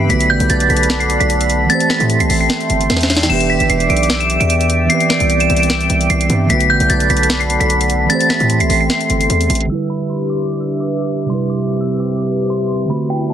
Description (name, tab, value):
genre	hip hop, trap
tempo	150 BPM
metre	4/4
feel	half-time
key	E minor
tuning	A4 = 439 Hz
part	mellow tine electric piano	accompaniment	0.0-13.3 s	C3 to C5	-19 LUFS	right 4 dB	phaser, low-pass filter
part	sweeping resonant pad	sustained chords	0.0-13.3 s	B3 to D6	-21 LUFS	left 2 dB	chorus, phaser
part	hard-hitting 808-style bass	bass	0.0-9.7 s	E1 to A2	-17 LUFS	equal	none
part	metallic FM bell	melody	0.1-13.3 s	G5 to E7	-17 LUFS	equal	chorus, phaser, low-pass filter, tape echo
part	trap drum kit	drums	0.1-9.7 s	crash cymbal, hi-hat, snare drum	-20 LUFS	left 1 dB	none
part	swell	sound effects	13.0-13.3 s	none	-26 LUFS	left 2 dB	none
room	digital ambience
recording	dense, heavily limited modern master, low-pass filter, lossy compression artefacts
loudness	-12 LUFS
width	side -10 dB against mid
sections	0.0-9.7 A section; 9.7-13.3 B section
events	drum fill 2.9-3.3; filter sweep 9.7-13.3; swell 13.0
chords	0.1 Bm7; 1.7 Am7; 3.3 Em7; 4.9 Cmaj7; 6.5 Bm7; 8.1 Am7; 9.7 Em7; 11.3 Cmaj7